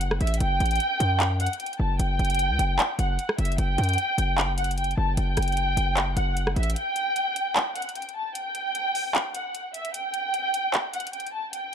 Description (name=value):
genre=hip hop, trap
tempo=151 BPM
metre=4/4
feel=half-time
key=F# phrygian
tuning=A4 = 440 Hz
part: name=dark studio violin section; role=melody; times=0.0-11.7 s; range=E5 to A5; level=-27 LUFS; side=right 1 dB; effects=low-pass filter
part: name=distorted 808-style bass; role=bass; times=0.0-6.8 s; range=F#1 to F#2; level=-24 LUFS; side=equal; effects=distortion
part: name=trap drum kit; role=drums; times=0.0-11.6 s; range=handclaps, hi-hat, rim click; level=-28 LUFS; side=equal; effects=none
room=digital ambience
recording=dark, warm production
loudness=-23 LUFS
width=side -8 dB against mid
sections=0.0-6.8 A section; 6.8-11.7 B section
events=break 6.8-11.7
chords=none